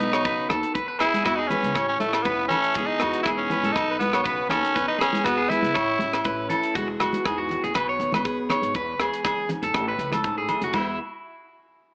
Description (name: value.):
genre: highlife guitar band.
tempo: 120 BPM.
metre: 4/4.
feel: straight.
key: E major.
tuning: A4 = 440 Hz.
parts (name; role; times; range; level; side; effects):
raspy tenor saxophone; melody; 0.0-6.5 s; A3 to E4; -24 LUFS; equal; slapback echo.
picked steel-string acoustic guitar; accompaniment; 0.0-11.0 s; E2 to G#4; -31 LUFS; equal; none.
electric guitar at the edge of break-up; arpeggios; 0.0-11.0 s; E4 to C#5; -26 LUFS; equal; spring reverb, slapback echo.
upright bass; bass; 0.0-11.0 s; E1 to E3; -36 LUFS; equal; none.
tight funk drum kit; drums; 0.0-10.9 s; crash cymbal, hi-hat, kick drum, rim click; -30 LUFS; equal; none.
congas; percussion; 0.0-11.0 s; none; -31 LUFS; equal; none.
agogo bells; percussion; 0.1-10.9 s; none; -30 LUFS; equal; none.
room: moderate studio ambience, RT60 0.5 s.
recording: AM radio sound.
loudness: -21 LUFS.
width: side -36 dB against mid.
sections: 0.0-6.8 A section; 6.8-10.7 B section; 10.7-11.9 C section.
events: none.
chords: 0.0 B; 0.8 E; 1.8 A; 2.8 E; 3.8 B; 4.8 E; 5.8 A; 6.8 E; 7.8 B; 8.7 E; 9.7 A; 10.7 E.